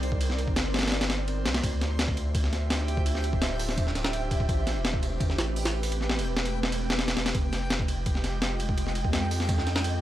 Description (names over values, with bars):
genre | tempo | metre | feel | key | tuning
drum and bass, jungle | 168 BPM | 4/4 | straight | D dorian | A4 = 440 Hz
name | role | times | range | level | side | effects
saturated sub bass | bass | 0.0-10.0 s | D1 to F2 | -30 LUFS | equal | none
breakbeat sampler-style drum kit | drums | 0.0-9.9 s | hi-hat, kick drum, ride cymbal, snare drum | -27 LUFS | equal | studio ambience
backwards swelling texture | texture | 0.0-10.0 s | G4 to C6 | -39 LUFS | right 3 dB | built-in reverb
room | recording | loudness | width
little or no reverb | dry, gritty hardware recording | -25 LUFS | side -13 dB against mid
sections
0.0-10.0 A section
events
kick drops out 0.9-1.6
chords
0.0 Cm9; 1.6 Dm9; 4.5 Am9; 7.3 Fm9